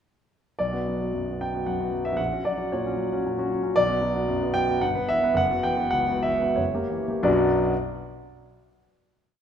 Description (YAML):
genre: classical, romantic character piece for solo piano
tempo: 84-117 BPM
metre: 3/4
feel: rubato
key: B minor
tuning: A4 = 439 Hz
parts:
  - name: clear concert grand piano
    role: solo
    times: 0.6-7.7 s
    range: F#1 to G5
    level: -22 LUFS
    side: equal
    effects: none
room: moderate scoring stage reverb, RT60 1.7 s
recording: recorded in a church or concert hall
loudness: -22 LUFS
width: side -8 dB against mid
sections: 0.6-7.3 A section; 7.3-9.1 final chord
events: slowing down 3.0-7.3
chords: 0.6 Bm; 2.2 F#/A#; 3.7 Bm; 4.8 Em/G; 5.4 F#7sus4; 6.6 F#7b9; 7.3 Bm